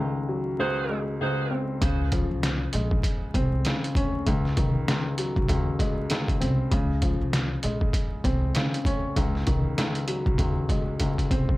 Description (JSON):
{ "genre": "hip hop, boom-bap hip-hop", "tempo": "98 BPM", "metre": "4/4", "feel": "swing 59% on 16ths", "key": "Db major", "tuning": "A4 = 442 Hz", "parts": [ { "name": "dark upright piano", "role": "accompaniment", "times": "0.0-11.6 s", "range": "Db2 to Db4", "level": "-28 LUFS", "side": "left 1 dB", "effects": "plate reverb" }, { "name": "clear saxophone section", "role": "stabs", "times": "0.6-1.0 s", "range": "Gb4 to C5", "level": "-31 LUFS", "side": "right 4 dB", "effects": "digital delay, plate reverb" }, { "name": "upright bass", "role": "bass", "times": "1.8-11.5 s", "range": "Bb1 to Eb2", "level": "-27 LUFS", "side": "equal", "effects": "none" }, { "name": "trip hop sampler-style drum kit", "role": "drums", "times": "1.8-11.6 s", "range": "hi-hat, kick drum, snare drum", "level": "-26 LUFS", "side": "equal", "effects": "overdrive" } ], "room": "light reverb", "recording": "vinyl crackle", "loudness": "-23 LUFS", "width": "side -18 dB against mid", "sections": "0.0-1.8 A section; 1.8-11.6 B section", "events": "drum fill 11.0-11.6", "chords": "0.0 Ab7/Db; 1.8 Dbmaj7; 4.3 Ab7; 6.7 Dbmaj7; 9.2 Ab7", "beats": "0.59 1.21 | 1.82 2.43 3.04 3.65 | 4.27 4.88 5.49 6.10 | 6.72 7.33 7.94 8.55 | 9.16 9.78 10.39 11.00" }